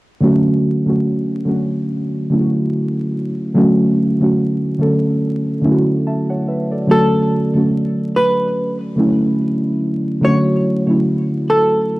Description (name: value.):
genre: lo-fi hip hop.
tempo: 72 BPM.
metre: 4/4.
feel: swing 57% on 16ths.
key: D major.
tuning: A4 = 440 Hz.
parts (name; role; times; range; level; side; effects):
muted felt-like synth keys; accompaniment; 0.2-12.0 s; D3 to A5; -15 LUFS; equal; chorus, cassette tape.
hollow-body jazz guitar; melody; 6.9-12.0 s; A4 to C#5; -16 LUFS; equal; none.
room: wet studio reverb, RT60 0.6 s.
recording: home recording on cassette, vinyl crackle.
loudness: -14 LUFS.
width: side -20 dB against mid.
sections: 0.2-6.9 A section; 6.9-12.0 B section.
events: none.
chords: 0.2 Dmaj7.